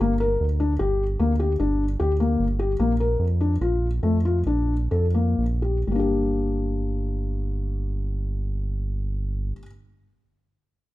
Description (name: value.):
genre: contemporary instrumental, contemporary.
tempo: 119-151 BPM.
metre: 7/4.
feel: straight.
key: G minor.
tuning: A4 = 441 Hz.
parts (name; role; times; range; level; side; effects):
felt-muted upright piano; arpeggios; 0.0-9.7 s; G3 to Bb4; -24 LUFS; left 3 dB; none.
round analog bass; bass; 0.0-9.5 s; G1 to F2; -24 LUFS; right 1 dB; none.
room: light reverb.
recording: none.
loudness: -21 LUFS.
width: side -16 dB against mid.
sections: 0.0-5.9 A section; 5.9-9.4 B section.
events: slowing down 2.4-5.9.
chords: 0.0 Gm; 2.8 Bb; 5.9 Gm.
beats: | 0.01 0.40 0.80 1.20 1.59 1.99 2.39 | 2.79 3.19 3.60 4.03 4.46 4.91 5.38 | 5.87 6.38 6.88 7.38 7.89 8.39 8.90.